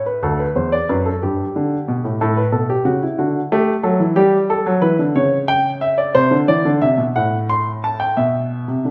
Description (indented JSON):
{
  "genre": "classical, baroque-style two-part invention for grand piano",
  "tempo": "61 BPM (dotted quarters)",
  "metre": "6/8",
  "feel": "straight",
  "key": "unclear",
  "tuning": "A4 = 439 Hz",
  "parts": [
    { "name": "warm baby grand piano", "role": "solo", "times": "0.0-8.9 s", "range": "D2 to C6", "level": "-18 LUFS", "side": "equal", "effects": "none" }
  ],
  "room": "moderate recital hall reverb, RT60 1.4 s",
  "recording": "lossy compression artefacts",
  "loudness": "-18 LUFS",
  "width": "mono",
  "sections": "0.0-8.9 A section",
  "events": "none",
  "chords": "0.2 D7; 1.2 G; 2.2 A; 3.2 D; 4.2 G; 5.2 C#dim; 6.2 C; 7.2 F#dim/A; 8.2 Bsus4",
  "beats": "| 0.23 1.22 | 2.21 3.20 | 4.18 5.16 | 6.16 7.16 | 8.17"
}